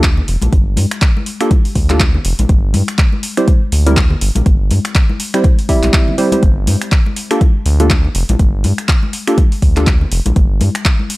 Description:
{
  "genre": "deep house",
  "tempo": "122 BPM",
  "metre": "4/4",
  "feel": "swing 58% on 16ths",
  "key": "G dorian",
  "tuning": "A4 = 438 Hz",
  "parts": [
    { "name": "warm analog keys", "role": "stabs", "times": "0.0-9.9 s", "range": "G3 to E5", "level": "-16 LUFS", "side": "right 1 dB", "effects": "chorus, sidechain pumping, analog delay" },
    { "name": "round analog bass", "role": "bass", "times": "0.0-10.7 s", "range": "F1 to G2", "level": "-14 LUFS", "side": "equal", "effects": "sidechain pumping" },
    { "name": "deep house drum kit", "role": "drums", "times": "0.0-11.2 s", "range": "finger snaps, handclaps, hi-hat", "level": "-20 LUFS", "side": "equal", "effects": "none" },
    { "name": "electronic kick drum", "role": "drums", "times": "0.0-11.0 s", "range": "none", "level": "-12 LUFS", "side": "equal", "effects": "none" },
    { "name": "sub drop", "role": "sound effects", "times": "0.0-0.5 s", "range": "none", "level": "-32 LUFS", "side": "equal", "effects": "none" },
    { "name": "congas", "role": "percussion", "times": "0.2-11.1 s", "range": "none", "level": "-24 LUFS", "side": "left 4 dB", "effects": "none" }
  ],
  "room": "digital ambience",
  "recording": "dry, gritty hardware recording",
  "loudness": "-11 LUFS",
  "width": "side -20 dB against mid",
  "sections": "0.0-11.2 A section",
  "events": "impact 0.0-0.5",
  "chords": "0.0 Gm7; 2.5 C/G; 6.4 Gm9; 10.4 N.C."
}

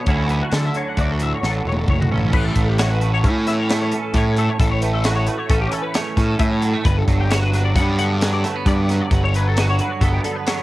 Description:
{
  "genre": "math rock and midwest emo",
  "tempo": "133 BPM",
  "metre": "5/4",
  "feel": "straight",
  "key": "unclear",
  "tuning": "A4 = 440 Hz",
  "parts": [
    { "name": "twangy electric guitar", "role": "accompaniment", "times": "0.0-10.6 s", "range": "D2 to F#4", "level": "-24 LUFS", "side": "right 5 dB", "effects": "ensemble chorus, cassette tape" },
    { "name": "twelve-string electric guitar", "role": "arpeggios", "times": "0.0-10.6 s", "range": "F#4 to F#5", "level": "-26 LUFS", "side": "left 6 dB", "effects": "ensemble chorus, cassette tape" },
    { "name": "fuzz picked electric bass", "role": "bass", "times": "0.1-10.2 s", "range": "E1 to D3", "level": "-19 LUFS", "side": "equal", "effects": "overdrive" },
    { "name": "crisp fusion drum kit", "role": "drums", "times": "0.1-10.6 s", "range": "crash cymbal, hi-hat, kick drum, snare drum, toms", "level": "-21 LUFS", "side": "equal", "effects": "none" }
  ],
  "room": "little or no reverb",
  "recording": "home recording on cassette",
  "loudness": "-16 LUFS",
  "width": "side -17 dB against mid",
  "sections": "0.0-2.3 A section; 2.3-10.6 B section",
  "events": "drum fill 1.4-2.3",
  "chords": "0.1 Dmaj9; 2.3 A; 6.9 Gmaj7"
}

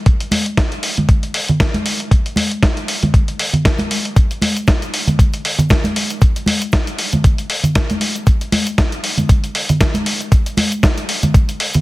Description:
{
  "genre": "nu-disco",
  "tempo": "117 BPM",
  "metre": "4/4",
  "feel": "swing 56% on 16ths",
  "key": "none",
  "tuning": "none",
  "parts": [
    { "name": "dusty soul sampler-style drum kit", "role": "drums", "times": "0.1-11.8 s", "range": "hi-hat, snare drum", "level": "-20 LUFS", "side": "equal", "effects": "none" },
    { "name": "electronic kick drum", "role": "drums", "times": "0.1-11.5 s", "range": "none", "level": "-13 LUFS", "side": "equal", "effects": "none" },
    { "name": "congas and cabasa", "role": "percussion", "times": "0.3-11.8 s", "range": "none", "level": "-19 LUFS", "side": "right 1 dB", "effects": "none" }
  ],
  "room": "light reverb",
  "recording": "dense, heavily limited modern master",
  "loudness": "-13 LUFS",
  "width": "side -19 dB against mid",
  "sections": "0.0-11.8 A section",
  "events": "none",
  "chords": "none"
}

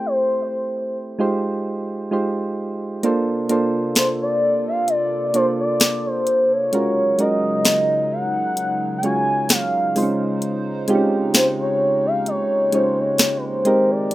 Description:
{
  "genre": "contemporary R&B",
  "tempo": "65 BPM",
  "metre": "4/4",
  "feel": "swing 54% on 16ths",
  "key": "unclear",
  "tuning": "A4 = 440 Hz",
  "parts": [
    { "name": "gliding portamento lead", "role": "melody", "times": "0.0-14.1 s", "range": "B4 to Ab5", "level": "-19 LUFS", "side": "equal", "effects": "chorus" },
    { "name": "soft electric-piano-like synth keys", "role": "accompaniment", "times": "0.0-14.1 s", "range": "Ab3 to D5", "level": "-22 LUFS", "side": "right 2 dB", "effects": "chorus" },
    { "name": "hollow soft pad", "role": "sustained chords", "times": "3.2-14.1 s", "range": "C3 to C5", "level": "-29 LUFS", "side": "left 1 dB", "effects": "chorus" },
    { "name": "trap drum kit", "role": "drums", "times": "3.0-14.1 s", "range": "hi-hat, snare drum", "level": "-18 LUFS", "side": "equal", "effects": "none" }
  ],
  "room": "light reverb",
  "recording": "rough home demo mix",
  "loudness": "-17 LUFS",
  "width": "side -16 dB against mid",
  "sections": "0.0-3.0 A section; 3.0-14.1 B section",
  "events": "break 0.0-3.0; kick muted 3.0-14.1",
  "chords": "0.0 Am7; 1.2 Fm9; 3.0 C13sus4; 6.7 Ebm11; 10.0 Bbm11"
}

